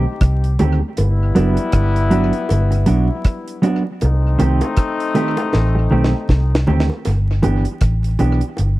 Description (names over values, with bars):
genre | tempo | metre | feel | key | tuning
roots reggae | 79 BPM | 4/4 | swing 58% on 16ths | G major | A4 = 439 Hz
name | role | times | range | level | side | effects
clear horn section | second line | 0.0-6.6 s | G3 to G4 | -23 LUFS | left 4 dB | tape echo
mellow electric guitar | accompaniment | 0.0-8.4 s | Eb3 to G4 | -19 LUFS | right 2 dB | tape echo
vintage muted fingered electric bass | bass | 0.0-8.8 s | F#1 to D2 | -16 LUFS | equal | none
deep reggae drum kit | drums | 0.2-8.8 s | hi-hat, kick drum, rim click, snare drum | -19 LUFS | equal | tape echo
bongos | percussion | 0.6-8.8 s | none | -26 LUFS | right 1 dB | none
room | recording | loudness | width
little or no reverb | dry, close 1970s-style studio recording, vinyl crackle | -14 LUFS | side -18 dB against mid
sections
0.0-7.1 A section; 7.1-8.8 B section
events
drum fill 5.5-7.1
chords
0.0 Cm6; 1.0 Gmaj7; 4.0 Cm6; 7.1 G6